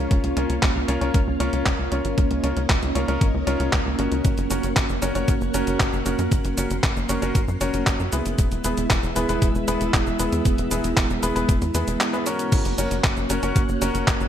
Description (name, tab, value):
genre	italo disco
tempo	116 BPM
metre	4/4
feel	straight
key	unclear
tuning	A4 = 441 Hz
part	string machine, full ensemble	sustained chords	0.0-14.3 s	G#3 to C6	-26 LUFS	right 1 dB	ensemble chorus
part	bright baby grand piano	stabs	0.0-14.3 s	Cb4 to Db5	-27 LUFS	left 1 dB	ping-pong delay
part	tight sequencer bass	bass	0.0-14.3 s	E1 to Gb2	-26 LUFS	equal	tube saturation
part	detuned 8-bit digital drum machine	drums	0.1-14.3 s	cabasa, crash cymbal, handclaps, hi-hat	-26 LUFS	equal	gated reverb
part	electronic kick drum	drums	0.1-14.2 s	none	-22 LUFS	equal	none
room	light reverb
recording	none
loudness	-20 LUFS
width	side -10 dB against mid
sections	0.0-12.5 A section; 12.5-14.3 B section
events	none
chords	0.0 Bbm; 4.2 Gb; 8.4 E; 12.5 Gb